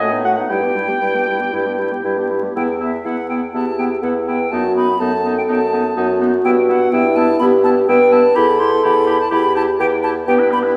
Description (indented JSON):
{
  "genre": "quick classical-period movement for wind quintet",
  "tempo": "124 BPM",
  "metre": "4/4",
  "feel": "rubato",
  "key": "E minor",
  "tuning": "A4 = 440 Hz",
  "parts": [
    { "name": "bright silver concert flute", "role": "melody", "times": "0.0-10.6 s", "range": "D#5 to C6", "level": "-24 LUFS", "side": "equal", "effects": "none" },
    { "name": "mellow oboe", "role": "second line", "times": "0.0-10.8 s", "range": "D#4 to G5", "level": "-27 LUFS", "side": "equal", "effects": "none" },
    { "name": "clear clarinet", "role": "accompaniment", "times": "0.0-10.8 s", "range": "B3 to G4", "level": "-25 LUFS", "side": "equal", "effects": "none" },
    { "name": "mellow French horn", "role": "accompaniment", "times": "0.0-10.6 s", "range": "G3 to B4", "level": "-20 LUFS", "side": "equal", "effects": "none" },
    { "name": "mellow bassoon", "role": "bass", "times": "0.0-10.8 s", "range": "E2 to A2", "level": "-22 LUFS", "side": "equal", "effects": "none" }
  ],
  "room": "wet recital hall reverb, RT60 1.4 s",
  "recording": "heard from further back in the room, vinyl crackle",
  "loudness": "-16 LUFS",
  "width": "mono",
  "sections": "0.0-2.6 A section; 2.6-10.8 A section",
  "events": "none",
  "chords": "0.0 B7/A; 0.5 Em/G; 2.6 Em; 4.5 B7/F#; 6.4 Em/G; 8.4 Em",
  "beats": "| 0.50 1.01 1.53 2.04 | 2.56 3.05 3.54 4.03 | 4.52 5.00 5.49 5.97 | 6.45 6.93 7.41 7.89 | 8.37 8.84 9.32 9.80 | 10.28 10.76"
}